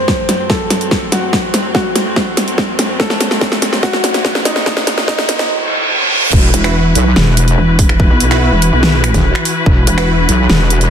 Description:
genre	heavy wobble dubstep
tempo	144 BPM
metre	4/4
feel	half-time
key	unclear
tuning	A4 = 440 Hz
part	dark grand piano	melody	0.0-5.5 s	D#4 to C5	-20 LUFS	equal	digital delay
part	rich studio string section	sustained chords	0.0-10.9 s	F#2 to B4	-20 LUFS	left 2 dB	sidechain pumping
part	riser and reverse cymbal	sound effects	3.8-6.3 s	none	-19 LUFS	right 2 dB	none
part	dubstep drum kit	drums	0.1-10.9 s	crash cymbal, finger snaps, hi-hat, snare drum	-15 LUFS	equal	overdrive
part	electronic kick drum	drums	0.1-9.7 s	none	-14 LUFS	equal	overdrive
part	wobble bass	bass	6.3-10.9 s	E1 to B1	-12 LUFS	equal	chorus, overdrive
part	pulsing pluck wobble bass	bass	6.5-10.3 s	E1 to B1	-12 LUFS	equal	chorus, overdrive
part	supersaw stab	stabs	6.6-10.2 s	E4 to B4	-20 LUFS	right 2 dB	digital delay
room	moderate lush hall reverb, RT60 1.7 s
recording	dense, heavily limited modern master, high-pass filter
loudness	-10 LUFS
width	side -8 dB against mid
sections	0.0-6.3 A section; 6.3-10.9 B section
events	build-up 0.0-6.3; drum fill 0.0-5.5; filter sweep 0.0-6.3; reverse cymbal 5.5-6.3; drop 6.3-10.9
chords	0.0 F#dim; 6.3 Esus2

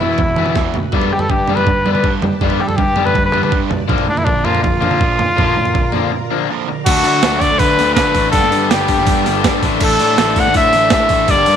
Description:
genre	indie rock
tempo	162 BPM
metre	4/4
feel	straight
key	D major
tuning	A4 = 440 Hz
part	warm trumpet	melody	0.0-11.6 s	D4 to F#5	-16 LUFS	equal	slapback echo
part	string machine, violins	sustained chords	0.0-11.6 s	F4 to D6	-28 LUFS	left 1 dB	ensemble chorus
part	overdriven electric guitar	riff	0.0-11.6 s	G2 to E4	-20 LUFS	left 16 dB	none
part	overdriven semi-hollow guitar	riff	0.0-11.6 s	E2 to A4	-23 LUFS	right 11 dB	wide subtle chorus, slapback echo
part	fuzz picked electric bass	bass	0.0-11.6 s	G1 to G3	-21 LUFS	left 1 dB	overdrive
part	breakbeat sampler-style drum kit	drums	0.2-11.6 s	crash cymbal, hi-hat, kick drum, snare drum, toms	-18 LUFS	right 2 dB	none
room	light reverb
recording	1960s-style stereo with parts hard left and right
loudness	-12 LUFS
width	side -8 dB against mid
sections	0.0-6.9 A section; 6.9-11.6 B section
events	drum fill 0.6-0.9; break 6.1-6.9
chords	0.0 Esus2; 0.9 Gadd9; 3.9 Bb; 6.9 D6; 8.3 Gadd9; 9.6 Asus4

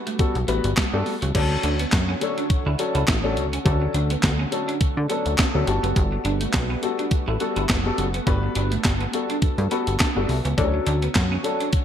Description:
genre	early-eighties boogie funk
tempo	104 BPM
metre	4/4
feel	swing 56% on 16ths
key	D major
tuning	A4 = 440 Hz
part	lush unison pad	sustained chords	0.0-11.8 s	D3 to C#5	-34 LUFS	right 1 dB	chorus, phaser
part	clean electric guitar	riff	0.1-11.7 s	F#3 to E4	-32 LUFS	right 5 dB	ensemble chorus
part	clean 12-bit digital drum machine	drums	0.1-11.8 s	crash cymbal, handclaps, hi-hat, kick drum, snare drum	-23 LUFS	equal	gated reverb
part	warm grand piano	accompaniment	0.2-11.7 s	E3 to B5	-26 LUFS	left 3 dB	wide subtle chorus
part	plucky analog bass	bass	0.4-11.4 s	F#1 to D3	-24 LUFS	equal	none
room	light reverb, digital ambience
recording	bright 1980s-style digital production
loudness	-20 LUFS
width	side -9 dB against mid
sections	0.0-1.3 A section; 1.3-11.8 B section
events	grand piano fill 9.4-10.6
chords	0.0 Gmaj9; 1.3 Dmaj7; 5.7 Gmaj9; 10.6 Dmaj7

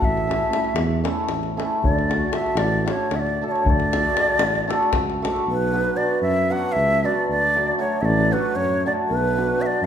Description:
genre	balkan folk, Balkan wedding band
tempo	232 BPM (eighths)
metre	7/8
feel	straight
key	D major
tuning	A4 = 438 Hz
part	breathy bright ney	melody	0.0-9.9 s	B4 to F#5	-22 LUFS	right 1 dB	none
part	dark tuba	bass	0.0-9.9 s	A1 to F#2	-25 LUFS	equal	none
part	davul	percussion	0.0-5.4 s	none	-26 LUFS	left 2 dB	none
part	hammered dulcimer	accompaniment	0.3-9.9 s	F#3 to A4	-24 LUFS	equal	none
room	wet recital hall reverb, RT60 1.3 s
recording	minimal, uncompressed stereo recording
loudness	-19 LUFS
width	side -8 dB against mid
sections	0.0-5.5 A section; 5.5-9.9 B section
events	none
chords	0.0 A; 1.8 D; 5.5 Bm; 7.3 D; 9.1 Bm

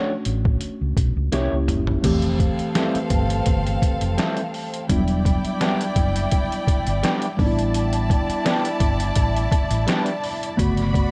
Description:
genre	lush 1970s-style soul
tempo	84 BPM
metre	4/4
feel	swing 54% on 16ths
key	unclear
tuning	A4 = 440 Hz
part	mellow tine electric piano	accompaniment	0.0-11.1 s	C#3 to G4	-28 LUFS	equal	none
part	electric guitar through a small old amp	riff	0.0-10.1 s	G3 to C#5	-30 LUFS	equal	none
part	hollow-body short-scale fingered electric bass	bass	0.3-11.0 s	E1 to C#2	-26 LUFS	equal	none
part	trip hop sampler-style drum kit	drums	0.3-11.1 s	crash cymbal, hi-hat, kick drum, snare drum, toms	-25 LUFS	equal	none
part	warm studio string section	second line	2.0-11.1 s	C4 to B5	-29 LUFS	equal	none
part	vibraphone with medium hard mallets	texture	2.8-9.5 s	B4 to G5	-38 LUFS	equal	none
room	light reverb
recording	dark, warm production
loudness	-21 LUFS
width	mono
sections	0.0-2.0 A section; 2.0-11.1 B section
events	drum fill 1.3-2.0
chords	0.0 Bm9 (rootless); 1.3 C7b9; 2.0 Fmaj9; 4.9 Em7; 7.4 A9sus4; 10.6 Gmaj9#11

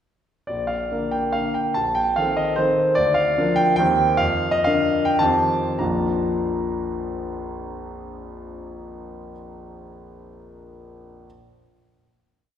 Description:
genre	classical, romantic triple-time dance for piano with dotted rhythms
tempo	94-154 BPM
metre	3/4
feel	rubato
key	Bb major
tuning	A4 = 440 Hz
part	warm concert grand piano	solo	0.5-11.3 s	Bb1 to Bb5	-20 LUFS	equal	none
room	wet scoring stage reverb, RT60 1.8 s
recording	heard from further back in the room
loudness	-19 LUFS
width	side -9 dB against mid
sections	0.5-5.8 A section; 5.8-9.2 final chord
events	slowing down 2.4-5.8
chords	0.5 Bb; 1.8 Adim/Bb; 3.0 Bb/D; 3.8 Cm/Eb; 4.2 Bb/F; 5.2 F9; 5.8 Bb

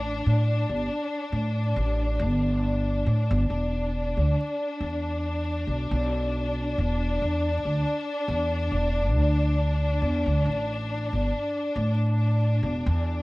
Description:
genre	trip hop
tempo	69 BPM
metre	4/4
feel	swing 55% on 16ths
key	unclear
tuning	A4 = 440 Hz
part	clear studio string section	sustained chords	0.0-13.2 s	D4	-28 LUFS	left 1 dB	none
part	upright bass	bass	0.0-13.2 s	E1 to A2	-24 LUFS	equal	none
room	light reverb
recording	worn, warbling old tape, cassette tape, vinyl crackle, warbly pitch drift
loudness	-23 LUFS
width	side -22 dB against mid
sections	0.0-13.2 A section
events	none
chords	0.0 A5; 3.5 E5; 10.4 A5

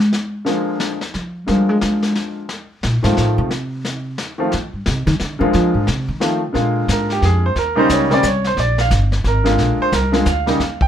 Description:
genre	jazz piano trio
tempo	178 BPM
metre	3/4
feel	swing 62% on 8ths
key	Bb mixolydian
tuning	A4 = 442 Hz
part	upright bass	bass	0.0-10.9 s	G1 to Ab3	-18 LUFS	equal	none
part	vintage brush drum kit	drums	0.0-10.9 s	brushed snare drum, hi-hat, kick drum, snare drum	-24 LUFS	left 2 dB	none
part	clear concert grand piano	melody	0.4-10.9 s	Db3 to G5	-18 LUFS	equal	none
room	little or no reverb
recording	minimal, uncompressed stereo recording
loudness	-15 LUFS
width	side -9 dB against mid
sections	0.0-6.5 A section; 6.5-10.9 A section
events	upright bass solo 0.0-6.5; grand piano solo 6.5-10.9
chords	0.0 Bb7; 2.5 F7(no3); 5.5 Bb7; 6.2 F7; 6.5 Bb7; 7.6 Eb7; 8.6 Bb7

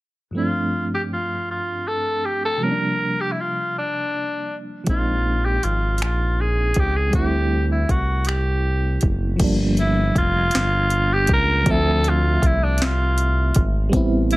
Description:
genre	slow six-eight R&B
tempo	53 BPM (dotted quarters)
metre	6/8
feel	straight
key	G minor, G dorian from 9.4 s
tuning	A4 = 440 Hz
part	FM electric piano with tremolo	accompaniment	0.3-14.4 s	G2 to E5	-25 LUFS	right 1 dB	none
part	raspy tenor saxophone	melody	0.4-14.4 s	D4 to Bb4	-22 LUFS	equal	plate reverb
part	smooth synth bass	bass	4.9-14.4 s	F1 to D2	-21 LUFS	equal	none
part	smooth R&B drum kit	drums	4.9-14.4 s	crash cymbal, finger snaps, hi-hat, kick drum, snare drum	-22 LUFS	equal	overdrive
room	light reverb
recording	none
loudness	-18 LUFS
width	side -19 dB against mid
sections	0.3-9.4 A section; 9.4-14.4 B section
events	none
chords	0.3 G9sus4; 2.6 C9sus4; 4.9 Bb9sus4; 7.1 D9sus4; 9.4 Gm7; 11.7 Dm9

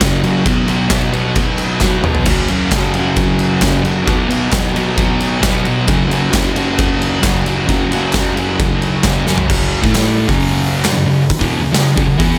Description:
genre	garage rock duo or trio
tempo	133 BPM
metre	4/4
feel	straight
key	F# minor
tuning	A4 = 440 Hz
part	thick fuzz guitar	riff	0.0-12.4 s	E2 to E4	-17 LUFS	equal	distortion
part	oversized low-tuned drum kit	drums	0.0-12.3 s	crash cymbal, hi-hat, kick drum, ride cymbal, snare drum, splash cymbal, toms	-19 LUFS	equal	none
part	group handclap	percussion	0.0-11.8 s	none	-29 LUFS	equal	none
room	little or no reverb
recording	none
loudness	-15 LUFS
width	mono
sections	0.0-9.5 A section; 9.5-12.4 B section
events	drum fill 1.8-2.3, 9.3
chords	0.5 B5; 2.3 F#5; 4.1 B5; 5.9 F#5; 9.8 A5; 10.3 F#5

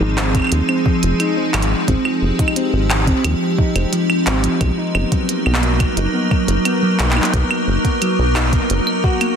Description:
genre	IDM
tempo	88 BPM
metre	4/4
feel	straight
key	unclear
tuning	A4 = 440 Hz
part	icy glass pad	sustained chords	0.0-9.4 s	F3 to A#4	-21 LUFS	equal	chorus, built-in reverb, vintage 12-bit sampler grit
part	harp-like synth pluck	arpeggios	0.0-9.3 s	F3 to F#4	-20 LUFS	equal	chorus, cassette tape, tape echo
part	deep acid bass	bass	0.0-8.8 s	F1 to Eb2	-18 LUFS	equal	none
part	glitchy drum kit	drums	0.2-9.3 s	claves, handclaps, hi-hat	-22 LUFS	right 1 dB	overdrive, ping-pong delay
part	electronic kick drum	drums	0.3-9.2 s	none	-18 LUFS	equal	overdrive
room	moderate lush hall reverb, RT60 1.7 s, digital ambience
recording	dense, heavily limited modern master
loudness	-14 LUFS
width	side -7 dB against mid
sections	0.0-9.4 A section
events	none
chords	0.0 Ab6; 4.6 Bmaj7

